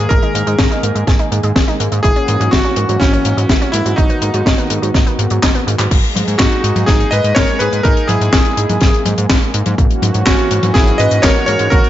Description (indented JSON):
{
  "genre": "italo disco",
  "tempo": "124 BPM",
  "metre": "4/4",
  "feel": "straight",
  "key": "G# minor",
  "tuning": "A4 = 440 Hz",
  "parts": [
    { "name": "bright electric grand piano", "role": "melody", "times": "0.0-11.9 s", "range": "C#4 to D#5", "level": "-17 LUFS", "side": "equal", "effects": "ping-pong delay" },
    { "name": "warm analog pad", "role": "sustained chords", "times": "0.0-11.9 s", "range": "D#3 to G#4", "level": "-22 LUFS", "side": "equal", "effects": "chorus" },
    { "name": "analog pluck", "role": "arpeggios", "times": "0.0-5.9 s", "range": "F#3 to G#4", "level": "-24 LUFS", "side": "right 3 dB", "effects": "chorus, digital delay" },
    { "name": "fat analog bass", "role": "bass", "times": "0.0-11.8 s", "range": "G#1 to G#2", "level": "-18 LUFS", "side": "equal", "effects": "none" },
    { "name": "electronic kick drum", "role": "drums", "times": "0.1-11.8 s", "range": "none", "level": "-14 LUFS", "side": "equal", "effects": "none" },
    { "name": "tight funk drum kit", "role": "drums", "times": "0.1-11.9 s", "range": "crash cymbal, handclaps, hi-hat, snare drum, toms", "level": "-17 LUFS", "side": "left 2 dB", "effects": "gated reverb" }
  ],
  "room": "light reverb, small room ambience",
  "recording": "nothing above 7.6 kHz",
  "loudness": "-11 LUFS",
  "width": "side -12 dB against mid",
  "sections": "0.0-5.9 A section; 5.9-11.9 B section",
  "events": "drum fill 5.4-5.9",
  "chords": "0.0 G#sus2; 2.0 F#7/G#; 4.0 Bmaj7/G#; 5.9 G#sus2; 9.8 F#7/G#"
}